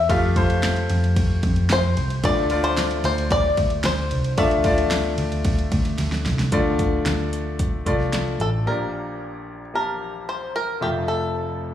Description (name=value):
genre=piano-driven pop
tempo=112 BPM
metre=4/4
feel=straight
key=D minor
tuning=A4 = 441 Hz
part: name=bluegrass banjo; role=melody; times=0.0-11.7 s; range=G4 to F5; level=-24 LUFS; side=left 2 dB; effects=slapback echo, tape echo
part: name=clear grand piano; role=accompaniment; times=0.0-11.7 s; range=F1 to A5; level=-25 LUFS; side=left 2 dB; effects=slapback echo
part: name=vintage muted picked electric bass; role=bass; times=0.0-8.6 s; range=A1 to F2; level=-23 LUFS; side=equal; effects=none
part: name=deep house drum kit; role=drums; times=0.1-8.5 s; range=handclaps, hi-hat, kick drum, ride cymbal, snare drum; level=-25 LUFS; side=equal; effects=none
room=light reverb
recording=live gig heard through the venue's PA, club reverb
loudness=-19 LUFS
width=side -11 dB against mid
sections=0.0-6.5 A section; 6.5-8.7 B section; 8.7-11.7 C section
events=drum fill 6.0-6.5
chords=0.0 F; 2.2 Dm; 8.7 Bb6; 10.8 Fmaj7